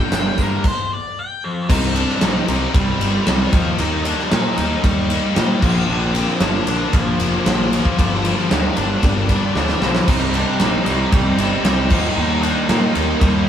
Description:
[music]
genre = quiet-loud alternative rock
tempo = 114 BPM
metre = 4/4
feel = straight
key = C minor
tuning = A4 = 440 Hz
[part]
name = octave-fuzz lead guitar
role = melody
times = 0.0-13.5 s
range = F3 to G5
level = -23 LUFS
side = left 1 dB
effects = distortion
[part]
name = biting overdriven guitar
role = riff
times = 0.0-13.5 s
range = G2 to Eb4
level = -24 LUFS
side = left 5 dB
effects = none
[part]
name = cranked stack guitar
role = riff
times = 0.0-0.6, 10.1-13.5 s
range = G2 to Eb4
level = -23 LUFS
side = right 4 dB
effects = overdrive
[part]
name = fuzz picked electric bass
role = bass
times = 0.0-13.5 s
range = F1 to Bb2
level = -22 LUFS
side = equal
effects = overdrive
[part]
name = big rock drum kit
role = drums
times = 0.1-13.3 s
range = crash cymbal, hi-hat, kick drum, ride cymbal, snare drum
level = -19 LUFS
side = equal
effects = none
[part]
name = muted studio string section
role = sustained chords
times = 1.7-13.5 s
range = Eb4 to D6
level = -33 LUFS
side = left 1 dB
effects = none
[part]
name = sludgy distorted guitar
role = riff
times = 1.7-13.5 s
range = G2 to Eb4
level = -25 LUFS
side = equal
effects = overdrive
[sound]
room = wet small room reverb, RT60 0.5 s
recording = band playing live in one room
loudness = -15 LUFS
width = side -9 dB against mid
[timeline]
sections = 0.0-1.7 A section; 1.7-13.5 B section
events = lead electric guitar solo 0.0-1.7; stop 0.6-1.7; drum fill 9.6-10.1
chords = 0.0 Gm7; 1.7 Cmadd9; 3.5 Eb6; 5.6 Bb; 8.0 Gm7; 10.1 Cmadd9; 11.9 Eb6

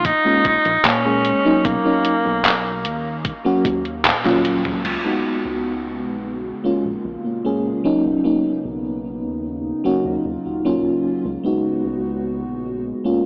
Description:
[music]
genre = vaporwave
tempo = 75 BPM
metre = 4/4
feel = straight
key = unclear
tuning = A4 = 441 Hz
[part]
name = clear tenor saxophone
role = melody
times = 0.0-3.2 s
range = A#3 to Eb4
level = -23 LUFS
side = equal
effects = tape echo
[part]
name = FM electric piano with soft pad layer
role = accompaniment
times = 0.0-13.2 s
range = Gb3 to Ab4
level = -23 LUFS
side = equal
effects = tremolo, subtle chorus, tape echo
[part]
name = chorused synth bass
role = bass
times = 0.0-12.9 s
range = Eb1 to Bb2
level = -32 LUFS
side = equal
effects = none
[part]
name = detuned 8-bit digital drum machine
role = drums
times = 0.0-5.0 s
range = crash cymbal, handclaps, hi-hat, toms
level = -24 LUFS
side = equal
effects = gated reverb
[part]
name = electronic kick drum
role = drums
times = 0.0-3.8 s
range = none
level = -30 LUFS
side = equal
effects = none
[part]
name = warbly tape-like pad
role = sustained chords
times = 5.5-13.3 s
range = Db3 to Gb4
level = -29 LUFS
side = equal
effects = chorus, built-in reverb
[sound]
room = moderate huge ambient reverb, RT60 8.2 s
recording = AM radio sound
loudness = -20 LUFS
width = mono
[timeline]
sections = 0.0-4.8 A section; 4.8-13.3 B section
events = drum fill 4.0-4.8; band accent 4.0-4.4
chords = 0.0 Bbm7; 1.6 Bmaj9; 3.2 Ebm9; 4.8 Db7sus4; 6.4 Bbm7; 8.0 Bmaj9; 9.6 Ebm9; 11.2 Db7sus4

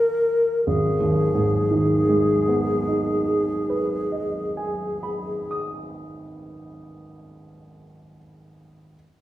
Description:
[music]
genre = classical, impressionist duo for alto flute and grand piano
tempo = 40 BPM (dotted quarters)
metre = 12/8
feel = rubato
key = G# minor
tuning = A4 = 439 Hz
[part]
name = bright alto flute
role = melody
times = 0.0-5.6 s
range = G#4 to A#4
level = -23 LUFS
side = left 1 dB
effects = none
[part]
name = warm grand piano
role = accompaniment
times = 0.0-9.0 s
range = G#1 to D#6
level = -24 LUFS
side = right 2 dB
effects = none
[sound]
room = wet recital hall reverb, RT60 1.4 s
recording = heard from further back in the room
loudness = -20 LUFS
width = side -14 dB against mid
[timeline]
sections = 0.7-6.7 A section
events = none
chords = 0.0 D#5; 0.7 G#m

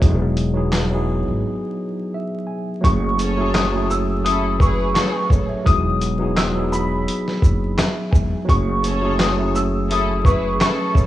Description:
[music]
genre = hip hop, boom-bap hip-hop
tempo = 85 BPM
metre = 4/4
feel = swing 56% on 16ths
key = F# dorian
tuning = A4 = 439 Hz
[part]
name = mellow tine electric piano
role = accompaniment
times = 0.0-11.1 s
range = F#3 to G#5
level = -23 LUFS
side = right 1 dB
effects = medium stereo tremolo, cassette tape, high-pass filter, low-pass filter
[part]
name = upright bass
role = bass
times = 0.0-11.1 s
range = E1 to A1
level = -22 LUFS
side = equal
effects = none
[part]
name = boom bap sampler-style drum kit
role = drums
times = 0.0-11.1 s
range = handclaps, hi-hat, kick drum, shaker, snare drum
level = -19 LUFS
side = equal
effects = none
[part]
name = dark upright piano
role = melody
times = 2.8-10.9 s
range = B5 to E6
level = -23 LUFS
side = left 1 dB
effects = high-pass filter, low-pass filter
[part]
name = warm studio string section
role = stabs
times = 3.2-10.9 s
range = C#4 to C#5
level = -26 LUFS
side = left 1 dB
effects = high-pass filter, low-pass filter, tape echo
[sound]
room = studio reverb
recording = vinyl crackle, small room ambience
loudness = -17 LUFS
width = side -14 dB against mid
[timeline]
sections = 0.0-2.8 A section; 2.8-11.1 B section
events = break 1.4-2.8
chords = 0.0 Emaj9; 2.8 F#m9; 5.7 Emaj9; 8.5 F#m9

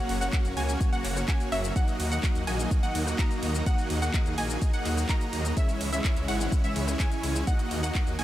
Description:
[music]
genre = EDM, festival progressive house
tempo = 126 BPM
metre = 4/4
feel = straight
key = unclear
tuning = A4 = 440 Hz
[part]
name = supersaw pad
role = sustained chords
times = 0.0-8.2 s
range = C#3 to G#4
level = -37 LUFS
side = equal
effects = sidechain pumping
[part]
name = wide unison pluck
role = arpeggios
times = 0.0-8.2 s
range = E5 to A#5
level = -35 LUFS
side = equal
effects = cassette tape, sidechain pumping, dub echo
[part]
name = dense compressed supersaw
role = riff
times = 0.0-8.2 s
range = G#3 to A#5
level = -32 LUFS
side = equal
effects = sidechain pumping, dub echo
[part]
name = detuned saw bass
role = bass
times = 0.1-8.2 s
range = F#1 to D#2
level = -30 LUFS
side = equal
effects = sidechain pumping
[part]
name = house drum kit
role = drums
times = 0.1-8.2 s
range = handclaps, hi-hat, ride cymbal, rim click, shaker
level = -36 LUFS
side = equal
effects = none
[part]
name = electronic kick drum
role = drums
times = 0.3-8.0 s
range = none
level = -26 LUFS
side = equal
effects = none
[sound]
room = digital ambience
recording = none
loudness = -25 LUFS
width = side -14 dB against mid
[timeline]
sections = 0.0-8.2 A section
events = none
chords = 0.0 F#; 1.8 D#m; 5.6 C#m; 7.5 D#m

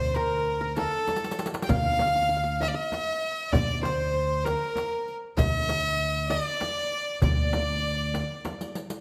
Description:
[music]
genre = Arabic maqam ensemble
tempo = 65 BPM (dotted quarters)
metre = 6/8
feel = straight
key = D maqam bayati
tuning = A4 = 440 Hz
[part]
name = clear violin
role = melody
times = 0.0-8.7 s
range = A4 to G5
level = -31 LUFS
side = equal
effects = none
[part]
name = bright studio violin section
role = second line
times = 0.0-8.7 s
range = A4 to G5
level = -38 LUFS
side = equal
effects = none
[part]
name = qanun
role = second line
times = 0.0-8.7 s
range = A4 to F5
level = -37 LUFS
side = equal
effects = none
[part]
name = upright bass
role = bass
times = 0.0-8.2 s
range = D2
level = -32 LUFS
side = equal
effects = none
[part]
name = riq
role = percussion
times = 0.1-9.0 s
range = none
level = -41 LUFS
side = equal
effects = none
[part]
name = darbuka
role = percussion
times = 0.2-8.8 s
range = none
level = -35 LUFS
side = equal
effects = none
[part]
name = frame drum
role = percussion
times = 0.8-8.6 s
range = none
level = -35 LUFS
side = equal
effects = none
[sound]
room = moderate recital hall reverb, RT60 1.4 s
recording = none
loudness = -27 LUFS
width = mono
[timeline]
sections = 0.0-9.0 A section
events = drum fill 1.1-1.7, 8.4-9.0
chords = none

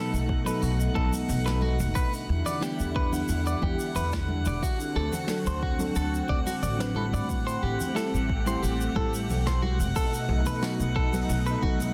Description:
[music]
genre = sunset chillout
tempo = 90 BPM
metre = 4/4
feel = straight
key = unclear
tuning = A4 = 441 Hz
[part]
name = mellow FM electric piano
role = accompaniment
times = 0.0-11.9 s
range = E3 to B5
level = -35 LUFS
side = equal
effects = chorus, digital delay
[part]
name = soft string machine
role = sustained chords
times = 0.0-11.9 s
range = B2 to G4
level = -36 LUFS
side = equal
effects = ensemble chorus
[part]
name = clean electric guitar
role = arpeggios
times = 0.0-11.8 s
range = F#4 to D5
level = -36 LUFS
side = equal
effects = spring reverb, digital delay
[part]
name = drifting glass-harmonics texture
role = texture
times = 0.0-11.9 s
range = F#5 to F#6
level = -40 LUFS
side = equal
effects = chorus, built-in reverb
[part]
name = upright bass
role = bass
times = 0.1-11.8 s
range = E1 to A2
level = -31 LUFS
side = equal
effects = none
[part]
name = soft brush drum kit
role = drums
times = 0.1-11.9 s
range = hi-hat, shaker, snare drum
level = -41 LUFS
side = equal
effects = soft clipping on snare
[part]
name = electronic kick drum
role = drums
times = 0.3-11.8 s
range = none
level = -32 LUFS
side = equal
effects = none
[part]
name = congas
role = percussion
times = 0.5-11.9 s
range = none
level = -40 LUFS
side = equal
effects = none
[sound]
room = light reverb, small room ambience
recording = dense, heavily limited modern master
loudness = -27 LUFS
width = mono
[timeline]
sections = 0.0-11.9 A section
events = none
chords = 0.0 B7; 2.0 Em7; 4.6 D7; 7.3 Am7; 9.6 B7

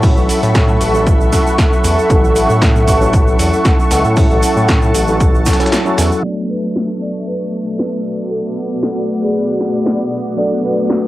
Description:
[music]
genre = deep house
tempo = 116 BPM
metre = 4/4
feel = swing 53% on 16ths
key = B minor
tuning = A4 = 442 Hz
[part]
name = warm analog pad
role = sustained chords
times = 0.0-11.1 s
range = A3 to C#6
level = -19 LUFS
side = equal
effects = chorus, sidechain pumping, cassette tape
[part]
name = mellow tine electric piano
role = stabs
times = 0.0-11.1 s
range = F#3 to A4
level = -19 LUFS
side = equal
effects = medium stereo tremolo, sidechain pumping, low-pass filter, cassette tape, tape echo
[part]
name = smooth synth bass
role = bass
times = 0.0-6.1 s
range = A1 to A2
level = -17 LUFS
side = equal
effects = tube saturation, sidechain pumping
[part]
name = breakbeat sampler-style drum kit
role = drums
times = 0.0-6.1 s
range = hi-hat, shaker, snare drum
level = -26 LUFS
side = equal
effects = high-pass filter on perc, cassette tape, high-pass filter on hats, high-pass filter on snare
[part]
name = electronic kick drum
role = drums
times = 0.0-5.6 s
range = none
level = -13 LUFS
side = equal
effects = cassette tape
[part]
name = tube shaker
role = percussion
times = 0.0-6.2 s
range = none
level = -28 LUFS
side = right 6 dB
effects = none
[part]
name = granular cloud pad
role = texture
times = 0.0-11.1 s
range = B3 to C#6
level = -21 LUFS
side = equal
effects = built-in reverb, sidechain pumping, cassette tape
[part]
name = deep house drum kit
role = drums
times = 0.3-11.0 s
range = crash cymbal, hi-hat, snare drum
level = -21 LUFS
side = equal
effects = overdrive, low-pass filter on hats, cassette tape, low-pass filter on snare, low-pass filter on cymbals, low-pass filter on room
[part]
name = marimba with medium mallets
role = melody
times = 6.2-11.1 s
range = G#4 to D5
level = -22 LUFS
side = right 1 dB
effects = cassette tape
[sound]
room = moderate studio reverb, RT60 0.6 s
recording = home recording on cassette, low-pass filter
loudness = -12 LUFS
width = side -16 dB against mid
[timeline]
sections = 0.0-6.2 A section; 6.2-11.1 B section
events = filter sweep on tine electric piano 0.0-6.2; kick drops out 5.7-6.2; band accent 5.7; filter sweep on analog synth pad 6.2-11.1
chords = 0.0 A6; 6.2 Bm7

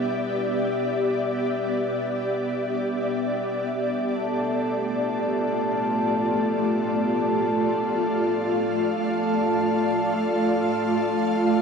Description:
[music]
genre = ambient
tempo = free time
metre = none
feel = none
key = D dorian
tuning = A4 = 440 Hz
[part]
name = ethereal airy pad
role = sustained chords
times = 0.0-11.6 s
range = A3 to F5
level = -23 LUFS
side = equal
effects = ensemble chorus, built-in reverb, tremolo
[part]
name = glass harmonica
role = texture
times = 4.1-11.6 s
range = A4 to A5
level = -27 LUFS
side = right 2 dB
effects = stereo widening
[sound]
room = wet huge ambient reverb, RT60 7.9 s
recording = none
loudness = -22 LUFS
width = side -6 dB against mid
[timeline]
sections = 0.0-11.6 A section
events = none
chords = 0.0 Em7; 4.1 Dm

